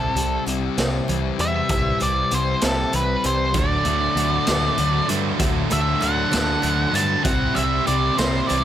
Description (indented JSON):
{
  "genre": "quiet-loud alternative rock",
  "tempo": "65 BPM (dotted quarters)",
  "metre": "6/8",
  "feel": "straight",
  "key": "unclear",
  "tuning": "A4 = 441 Hz",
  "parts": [
    { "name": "octave-fuzz lead guitar", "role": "melody", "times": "0.0-8.6 s", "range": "A4 to A5", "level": "-23 LUFS", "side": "equal", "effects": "distortion" },
    { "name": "picked steel-string acoustic guitar", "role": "arpeggios", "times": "0.0-8.6 s", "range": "C3 to G4", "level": "-30 LUFS", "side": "right 4 dB", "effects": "tape echo" },
    { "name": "thick fuzz guitar", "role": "riff", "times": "0.0-8.6 s", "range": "C3 to E4", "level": "-26 LUFS", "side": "left 11 dB", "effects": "distortion" },
    { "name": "growling picked electric bass", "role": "bass", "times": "0.0-8.6 s", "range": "C2 to G2", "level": "-25 LUFS", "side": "equal", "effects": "overdrive" },
    { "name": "raw garage drum kit", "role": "drums", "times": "0.2-8.6 s", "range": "hi-hat, kick drum, snare drum", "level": "-25 LUFS", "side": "equal", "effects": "none" },
    { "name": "sludgy distorted guitar", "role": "riff", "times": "3.5-8.6 s", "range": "C3 to E4", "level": "-26 LUFS", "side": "right 12 dB", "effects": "overdrive" }
  ],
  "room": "light reverb, small room reverb",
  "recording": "none",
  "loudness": "-18 LUFS",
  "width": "side -11 dB against mid",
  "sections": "0.0-8.6 A section",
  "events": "lead electric guitar solo 0.0-8.6",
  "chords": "0.0 C; 3.6 D; 7.3 C"
}